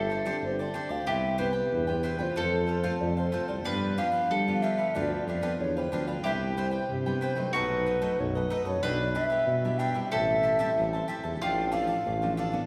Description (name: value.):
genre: samba.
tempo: 93 BPM.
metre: 4/4.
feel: straight.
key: C major.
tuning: A4 = 441 Hz.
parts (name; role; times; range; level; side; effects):
mellow hollow wooden flute; melody; 0.0-12.7 s; B4 to G5; -32 LUFS; equal; none.
mandolin; second line; 0.0-12.7 s; F4 to B4; -37 LUFS; equal; none.
cavaquinho; accompaniment; 0.0-12.7 s; D4 to A5; -40 LUFS; equal; none.
nylon-string guitar; accompaniment; 0.0-12.7 s; F#2 to A4; -38 LUFS; equal; none.
warm tuba; bass; 0.0-12.6 s; G1 to G3; -34 LUFS; equal; none.
room: wet church reverb, RT60 3.0 s.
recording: recorded in a church or concert hall.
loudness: -28 LUFS.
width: mono.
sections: 0.0-12.7 A section.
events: none.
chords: 0.0 Gsus4; 1.1 Cmaj7; 2.4 F; 3.7 G7; 6.2 Cmaj7; 7.5 B7; 8.8 Em7/B; 10.1 Am7; 11.4 F6/A.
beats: 0.42 | 1.07 1.72 2.36 3.01 | 3.66 4.30 4.95 5.60 | 6.25 6.89 7.54 8.19 | 8.83 9.48 10.12 10.77 | 11.42 12.06.